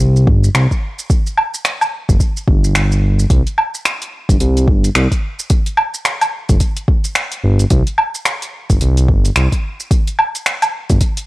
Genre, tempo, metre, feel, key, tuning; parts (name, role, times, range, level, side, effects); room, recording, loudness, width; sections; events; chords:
organic downtempo; 109 BPM; 4/4; swing 60% on 16ths; A4 = 440 Hz
smooth synth bass; bass; 0.0-11.0 s; G1 to C2; -12 LUFS; equal
deep house drum kit; drums; 0.0-11.3 s; finger snaps, hi-hat, shaker, woodblock; -17 LUFS; equal; overdrive
electronic kick drum; drums; 0.3-11.1 s; -14 LUFS; equal; overdrive
little or no reverb; dry, gritty hardware recording, cassette tape; -13 LUFS; side -19 dB against mid
0.0-11.3 A section